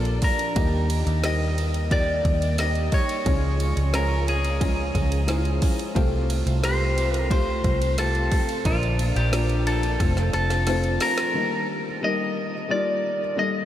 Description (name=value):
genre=piano-driven pop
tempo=89 BPM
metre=4/4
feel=straight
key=unclear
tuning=A4 = 440 Hz
part: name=electric guitar at the edge of break-up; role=melody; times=0.0-13.7 s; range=F4 to Eb5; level=-27 LUFS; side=left 1 dB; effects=spring reverb, diffuse ambient delay
part: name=felt-muted upright piano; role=accompaniment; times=0.0-13.7 s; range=Bb2 to G5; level=-29 LUFS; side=left 3 dB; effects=lush chorus
part: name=direct-recorded clean electric guitar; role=riff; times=0.0-11.4 s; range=Bb2 to Bb4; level=-33 LUFS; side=right 5 dB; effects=ensemble chorus
part: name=vintage muted fingered electric bass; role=bass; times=0.0-11.0 s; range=F1 to Eb2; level=-24 LUFS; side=equal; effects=none
part: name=deep house drum kit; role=drums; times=0.1-11.3 s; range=hi-hat, kick drum, ride cymbal, snare drum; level=-27 LUFS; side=equal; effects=none
room=moderate huge ambient reverb, RT60 7.7 s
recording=dreamy mix soaked in reverb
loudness=-21 LUFS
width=side -12 dB against mid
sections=0.0-11.3 A section; 11.3-13.7 A section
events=drum fill 10.0-11.3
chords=0.0 Bb; 0.6 Eb; 3.3 Db; 6.0 Fadd9/C; 8.7 Bb; 10.0 F; 11.3 Eb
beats=| 0.56 1.24 1.91 2.59 | 3.26 3.94 4.61 5.29 | 5.96 6.63 7.31 7.98 | 8.65 9.33 10.00 10.68 | 11.35 12.02 12.70 13.37